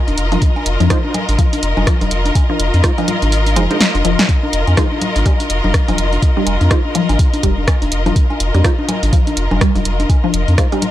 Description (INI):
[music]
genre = minimal techno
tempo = 124 BPM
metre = 4/4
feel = swing 59% on 16ths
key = F minor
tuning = A4 = 440 Hz
[part]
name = dark studio string section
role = texture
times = 0.0-10.9 s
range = F4 to Eb5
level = -21 LUFS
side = left 2 dB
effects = sidechain pumping
[part]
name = round analog bass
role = bass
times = 0.1-10.6 s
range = F1 to F2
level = -16 LUFS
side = equal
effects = sidechain pumping
[part]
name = punchy analog drum machine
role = drums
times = 0.1-10.9 s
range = hi-hat, rim click, snare drum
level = -19 LUFS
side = right 1 dB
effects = none
[part]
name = congas and cowbell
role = percussion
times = 0.1-10.9 s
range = none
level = -22 LUFS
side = left 1 dB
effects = tape echo
[part]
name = resonant blip pluck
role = riff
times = 0.3-10.8 s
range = F3 to G3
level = -22 LUFS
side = left 2 dB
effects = phaser, sidechain pumping, tape echo
[part]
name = electronic kick drum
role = drums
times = 0.4-10.7 s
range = none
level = -14 LUFS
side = equal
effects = none
[part]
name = filtered dub chord stab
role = stabs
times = 0.9-10.7 s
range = Ab3 to C5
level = -24 LUFS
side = right 3 dB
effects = wide subtle chorus, tape echo
[sound]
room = little or no reverb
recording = dry, gritty hardware recording, transformer saturation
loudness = -12 LUFS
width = side -13 dB against mid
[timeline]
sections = 0.0-10.9 A section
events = kick drops out 3.3-4.3; drum fill 3.8-4.3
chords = 0.0 F7(no3)